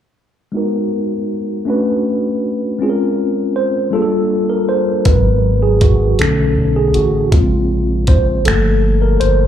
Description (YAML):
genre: slow six-eight R&B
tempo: 53 BPM (dotted quarters)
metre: 6/8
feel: straight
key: unclear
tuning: A4 = 440 Hz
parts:
  - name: mellow tine electric piano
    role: accompaniment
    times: 0.5-9.5 s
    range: C#3 to B#4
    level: -15 LUFS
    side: equal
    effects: medium stereo tremolo, low-pass filter, slapback echo
  - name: round analog bass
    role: bass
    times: 5.1-9.5 s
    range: G1 to B1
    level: -15 LUFS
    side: equal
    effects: none
  - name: smooth R&B drum kit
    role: drums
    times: 5.1-9.4 s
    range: finger snaps, hi-hat, kick drum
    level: -15 LUFS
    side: equal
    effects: none
room: little or no reverb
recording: live gig heard through the venue's PA, club reverb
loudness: -13 LUFS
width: side -10 dB against mid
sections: 0.5-5.1 A section; 5.1-9.5 B section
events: filter sweep on tine electric piano 0.5-5.1; tine electric piano solo 5.1-9.5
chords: 0.5 G#m9; 1.7 Bm9; 2.8 A#m9; 3.9 Gm9; 5.1 G#m9; 6.2 Bm9; 7.3 A#m9; 8.5 Gm9